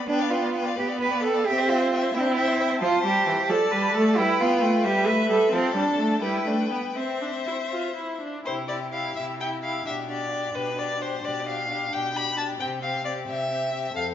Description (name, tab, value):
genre	quick classical-period movement for string quartet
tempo	87 BPM (dotted quarters)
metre	6/8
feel	rubato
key	C major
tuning	A4 = 440 Hz
part	rich violin	melody	0.0-14.1 s	G4 to A5	-31 LUFS	left 8 dB	none
part	clear violin	second line	0.0-14.0 s	A4 to B5	-30 LUFS	left 2 dB	none
part	rich viola	accompaniment	0.1-14.1 s	E3 to F4	-28 LUFS	right 1 dB	none
part	rich cello	bass	0.1-14.1 s	F2 to B4	-26 LUFS	right 3 dB	none
room	wet recital hall reverb, RT60 1.7 s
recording	nothing above 7.7 kHz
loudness	-22 LUFS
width	side -10 dB against mid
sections	0.0-8.4 A section; 8.4-14.1 B section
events	none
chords	0.1 G7/B; 1.5 C; 2.8 F; 3.5 D5; 4.2 G; 4.8 Em/G; 5.5 Dm7/F; 6.2 G; 7.0 C; 9.9 G/B; 12.6 C